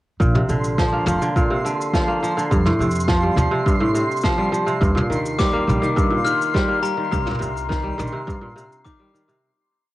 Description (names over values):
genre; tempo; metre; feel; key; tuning
folktronica; 104 BPM; 4/4; straight; Bb major; A4 = 440 Hz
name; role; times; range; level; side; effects
kora; arpeggios; 0.2-9.5 s; G2 to Bb3; -21 LUFS; equal; cassette tape, tape echo
upright bass; bass; 0.2-8.1 s; F1 to F2; -23 LUFS; equal; none
electronic kick drum; drums; 0.2-9.0 s; none; -22 LUFS; equal; cassette tape
jazz brush drum kit; drums; 0.2-9.4 s; cabasa, snare drum, toms; -28 LUFS; equal; cassette tape
twinkling granular texture; texture; 0.5-9.4 s; C6; -30 LUFS; right 3 dB; built-in reverb, cassette tape
glockenspiel with brass mallets; second line; 5.4-9.1 s; Bb5 to F6; -24 LUFS; left 7 dB; cassette tape, tape echo
room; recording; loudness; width
light reverb, small room ambience; home recording on cassette; -17 LUFS; side -16 dB against mid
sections
0.2-9.4 groove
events
fade-out 6.4-9.4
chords
0.2 Bbadd9; 2.5 Fadd9; 4.8 Eb; 7.1 Cm7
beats
| 0.20 0.78 1.36 1.93 | 2.51 3.09 3.66 4.24 | 4.82 5.39 5.97 6.55 | 7.12 7.70 8.28 8.86